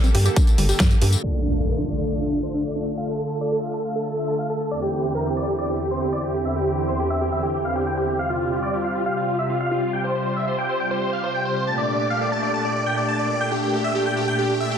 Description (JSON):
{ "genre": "uplifting trance", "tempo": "138 BPM", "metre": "4/4", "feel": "straight", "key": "D minor", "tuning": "A4 = 440 Hz", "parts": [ { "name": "lush unison pad", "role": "sustained chords", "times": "0.0-14.8 s", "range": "E2 to A4", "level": "-25 LUFS", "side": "equal", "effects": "chorus, sidechain pumping" }, { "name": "wide unison pluck", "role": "arpeggios", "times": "0.0-1.1 s", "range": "G3 to G4", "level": "-28 LUFS", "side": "right 3 dB", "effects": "sidechain pumping, dub echo" }, { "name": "big-room dance drum kit", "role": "drums", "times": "0.0-1.3 s", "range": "crash cymbal, hi-hat, snare drum, tambourine", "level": "-25 LUFS", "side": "left 1 dB", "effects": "overdrive" }, { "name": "tight sequencer bass", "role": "bass", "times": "0.1-1.2 s", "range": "G1 to G2", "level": "-19 LUFS", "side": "equal", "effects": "sidechain pumping" }, { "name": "electronic kick drum", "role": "drums", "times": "0.4-0.9 s", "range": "none", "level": "-17 LUFS", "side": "equal", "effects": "overdrive" }, { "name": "big supersaw lead", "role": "melody", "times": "1.2-14.8 s", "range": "D4 to A5", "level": "-24 LUFS", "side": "equal", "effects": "cassette tape, sidechain pumping, low-pass filter, dub echo" }, { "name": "impact", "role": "sound effects", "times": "1.2-3.0 s", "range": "none", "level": "-26 LUFS", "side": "equal", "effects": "none" } ], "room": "moderate recital hall reverb, RT60 1.6 s, digital ambience", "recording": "low-pass filter", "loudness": "-20 LUFS", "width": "side -8 dB against mid", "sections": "0.0-1.2 A section; 1.2-14.8 B section", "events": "impact 1.2-3.0; filter sweep on supersaw synth 1.2-14.8; filter sweep on analog synth pad 1.2-14.8; filter sweep 1.2-14.8", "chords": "0.0 Gmadd9; 1.2 Dm; 4.7 Cadd9/E; 8.2 Fsus2; 11.7 Gmadd9" }